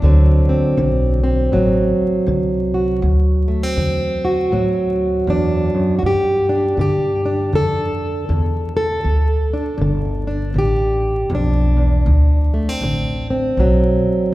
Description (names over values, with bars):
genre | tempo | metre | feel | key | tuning
acoustic country blues, solo or duo | 80 BPM | 4/4 | swing 61% on 8ths | D mixolydian | A4 = 440 Hz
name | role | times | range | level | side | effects
fingerpicked plugged-in steel-string acoustic guitar | melody | 0.0-14.3 s | D2 to A4 | -17 LUFS | equal | none
upright bass | bass | 0.0-14.1 s | G1 to G2 | -18 LUFS | equal | none
room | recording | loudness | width
wet concert hall reverb, RT60 2.3 s | recorded in a church or concert hall, vinyl crackle | -15 LUFS | side -17 dB against mid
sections
0.0-14.3 A section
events
none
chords
0.0 D7; 6.0 G7; 12.1 D7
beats
| 0.02 0.77 1.52 2.27 | 3.02 3.78 4.53 5.28 | 6.04 6.79 7.54 8.30 | 9.05 9.81 10.56 11.32 | 12.07 12.83 13.59 14.34